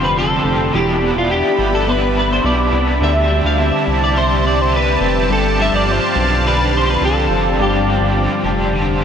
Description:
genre	dream pop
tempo	105 BPM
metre	4/4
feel	straight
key	unclear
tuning	A4 = 440 Hz
part	electric guitar at the edge of break-up	melody	0.0-9.0 s	F4 to F5	-19 LUFS	equal	ensemble chorus, ping-pong delay
part	overdriven electric guitar	accompaniment	0.0-9.0 s	E2 to G4	-23 LUFS	right 1 dB	tremolo, analog chorus
part	phased analog pad	sustained chords	0.0-9.0 s	G4 to C6	-20 LUFS	right 1 dB	phaser, chorus
part	clean electric guitar	arpeggios	0.0-9.0 s	G2 to G4	-20 LUFS	left 2 dB	ensemble chorus, ping-pong delay
part	chorused synth bass	bass	0.0-9.0 s	E1 to D2	-19 LUFS	equal	none
room	wet cathedral reverb, RT60 5.9 s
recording	dreamy mix soaked in reverb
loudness	-13 LUFS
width	side -8 dB against mid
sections	0.0-9.0 A section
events	none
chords	0.0 G7sus4; 0.7 Em7; 3.0 D9sus4; 5.3 G7sus4

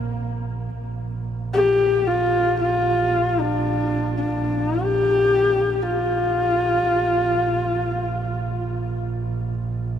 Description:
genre	mongolian traditional, Mongolian folk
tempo	free time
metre	none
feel	none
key	Bb gong mode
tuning	A4 = 441 Hz
part	dark horsehead fiddle	melody	0.0-9.0 s	Bb3 to G4	-20 LUFS	left 2 dB	none
part	warm double bass	drone	0.0-10.0 s	Bb1	-26 LUFS	right 3 dB	none
room	moderate huge ambient reverb, RT60 7.4 s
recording	dark, warm production, lossy compression artefacts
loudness	-19 LUFS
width	side -9 dB against mid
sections	0.8-10.0 A section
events	none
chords	none

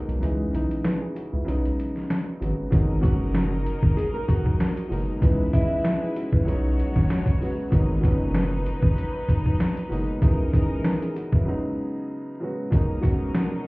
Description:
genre	hip hop, boom-bap hip-hop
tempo	96 BPM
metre	4/4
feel	swing 55% on 16ths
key	G# minor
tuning	A4 = 440 Hz
part	dark upright piano	accompaniment	0.0-13.7 s	A#2 to D#5	-28 LUFS	equal	cassette tape, high-pass filter, low-pass filter, plate reverb
part	saturated sub bass	bass	0.1-11.4 s	F#1 to C#2	-25 LUFS	equal	none
part	trip hop sampler-style drum kit	drums	0.1-13.5 s	hi-hat, kick drum, snare drum	-22 LUFS	equal	vintage 12-bit sampler grit
part	dark studio string section	stabs	2.7-13.7 s	E3 to C#5	-33 LUFS	left 1 dB	high-pass filter, low-pass filter, plate reverb, tape echo
part	flamenco guitar	melody	3.0-6.0, 13.0-13.5 s	E4 to A#4	-30 LUFS	equal	high-pass filter, low-pass filter, plate reverb, tape echo
room	light reverb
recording	heard muffled through a wall, club reverb, vinyl crackle, EQ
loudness	-21 LUFS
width	side -24 dB against mid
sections	0.0-2.7 A section; 2.7-13.7 B section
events	kick muted 0.2-2.7; break 11.5-12.7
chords	0.2 C#m9; 1.5 B6; 2.7 G#m9; 5.2 C#m9; 6.5 B6; 7.7 G#m9; 10.2 C#m9; 11.5 B6; 12.7 G#m9

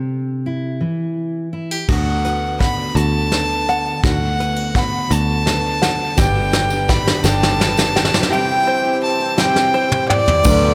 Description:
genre	indie folk with a building arrangement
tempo	56 BPM (dotted quarters)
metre	6/8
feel	straight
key	D mixolydian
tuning	A4 = 441 Hz
part	fingerpicked steel-string acoustic guitar	accompaniment	0.0-8.3 s	D2 to G4	-27 LUFS	equal	none
part	rich fiddle	melody	1.9-10.7 s	D5 to B5	-22 LUFS	equal	slapback echo
part	open-back banjo	arpeggios	1.9-10.7 s	F#4 to G5	-28 LUFS	equal	slapback echo
part	picked electric bass	bass	1.9-10.7 s	G1 to D2	-23 LUFS	equal	none
part	soft brush drum kit	drums	1.9-10.6 s	crash cymbal, hi-hat, kick drum, snare drum, toms	-21 LUFS	equal	none
part	felt-muted upright piano	accompaniment	6.2-10.5 s	G1 to G5	-30 LUFS	equal	none
part	picked steel-string acoustic guitar	accompaniment	6.2-10.7 s	G2 to A4	-25 LUFS	equal	none
part	hand-pumped harmonium	sustained chords	6.2-10.7 s	D3 to C5	-30 LUFS	equal	none
part	tambourine	percussion	6.2-10.6 s	none	-34 LUFS	equal	none
room	moderate lush hall reverb, RT60 2.7 s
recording	big arena sound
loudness	-17 LUFS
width	mono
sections	0.0-1.9 A section; 1.9-10.4 B section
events	build-up 1.9-10.4; drum fill 1.9-8.3, 9.4-10.4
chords	0.0 C; 1.9 D6; 6.2 G; 8.3 C

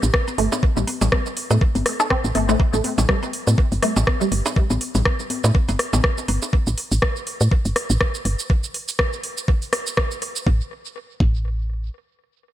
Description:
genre	minimal techno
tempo	122 BPM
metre	4/4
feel	swing 57% on 16ths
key	unclear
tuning	A4 = 440 Hz
part	woody FM bass	bass	0.0-11.9 s	G1 to A2	-20 LUFS	equal	sidechain pumping
part	garage drum kit	drums	0.0-10.4 s	hi-hat, rim click, shaker	-24 LUFS	equal	studio reverb, tape echo
part	bongos, cowbell and congas	percussion	0.0-6.5 s	none	-28 LUFS	left 2 dB	studio reverb, analog delay
part	electronic kick drum	drums	0.1-11.4 s	none	-19 LUFS	equal	studio reverb
part	resonant blip pluck	riff	0.4-4.2 s	G3 to A4	-24 LUFS	right 1 dB	chorus, phaser, sidechain pumping, dub echo
room	digital ambience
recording	echo-heavy mix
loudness	-18 LUFS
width	side -13 dB against mid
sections	0.0-10.5 A section; 10.5-12.5 B section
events	drop 0.0-10.5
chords	0.0 Gsus2; 10.5 N.C.

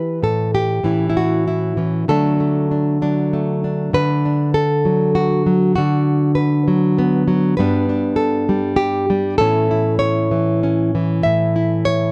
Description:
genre	folk, solo fingerstyle acoustic guitar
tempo	98 BPM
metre	3/4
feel	straight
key	D major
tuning	A4 = 441 Hz
part	nylon-string guitar	solo	0.0-12.1 s	G2 to E5	-18 LUFS	equal	none
room	light reverb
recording	dark, warm production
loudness	-17 LUFS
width	mono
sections	0.0-3.9 A section; 3.9-12.1 B section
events	none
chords	0.2 A5; 0.8 A; 2.1 D; 5.8 Bm/D; 7.6 G; 9.4 A

